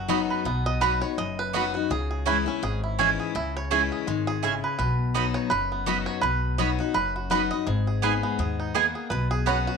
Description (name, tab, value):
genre	bluegrass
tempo	166 BPM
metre	4/4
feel	swing 56% on 8ths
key	B major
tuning	A4 = 440 Hz
part	bluegrass banjo	melody	0.0-9.8 s	F#3 to D#5	-29 LUFS	right 4 dB	slapback echo
part	picked steel-string acoustic guitar	accompaniment	0.0-9.8 s	F#2 to G#4	-29 LUFS	left 12 dB	none
part	upright bass	bass	0.0-9.6 s	F#1 to D#2	-29 LUFS	equal	none
part	mandolin	stabs	0.1-9.6 s	B3 to B5	-27 LUFS	right 11 dB	none
room	moderate echo chamber reverb, RT60 1.6 s, small room ambience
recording	1960s-style stereo with parts hard left and right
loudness	-23 LUFS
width	side -5 dB against mid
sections	0.0-9.8 A section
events	five-string banjo solo 0.0-9.8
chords	0.0 B; 1.9 C#m; 4.8 B; 7.7 G#m; 9.1 Bsus2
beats	0.09 | 0.46 0.82 1.18 1.54 | 1.90 2.27 2.63 2.99 | 3.35 3.71 4.07 4.43 | 4.79 5.15 5.51 5.87 | 6.23 6.59 6.95 7.31 | 7.67 8.03 8.39 8.75 | 9.11 9.47